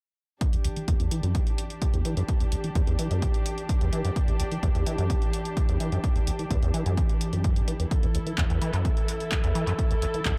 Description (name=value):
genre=acid house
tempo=128 BPM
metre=4/4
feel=straight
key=E minor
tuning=A4 = 440 Hz
part: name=dark chamber string section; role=sustained chords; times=0.4-10.4 s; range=E3 to A4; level=-36 LUFS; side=equal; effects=sidechain pumping
part: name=electronic kick drum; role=drums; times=0.4-10.4 s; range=none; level=-28 LUFS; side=equal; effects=none
part: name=punchy analog drum machine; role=drums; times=0.4-10.4 s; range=handclaps, hi-hat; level=-38 LUFS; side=equal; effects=dub echo
part: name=deep acid bass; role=riff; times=0.5-10.3 s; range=D2 to E3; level=-31 LUFS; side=equal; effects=tube saturation, lush chorus, dub echo
room=light reverb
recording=echo-heavy mix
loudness=-26 LUFS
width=mono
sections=0.4-10.4 A section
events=filter sweep on acid bass 0.4-10.4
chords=0.4 Em7